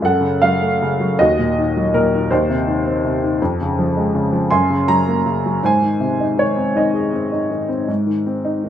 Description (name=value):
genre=classical, lyrical solo piano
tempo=53 BPM (dotted quarters)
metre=6/8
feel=rubato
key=unclear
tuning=A4 = 440 Hz
part: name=warm upright piano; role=solo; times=0.0-8.7 s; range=Eb2 to C6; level=-15 LUFS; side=equal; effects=none
room=light reverb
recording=close, detailed microphones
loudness=-15 LUFS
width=side -10 dB against mid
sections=0.0-8.7 A section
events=none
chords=0.0 Gbm; 1.2 Ebm; 2.3 Cm/Eb; 3.4 Db/F; 4.5 Gbadd9; 5.6 Ab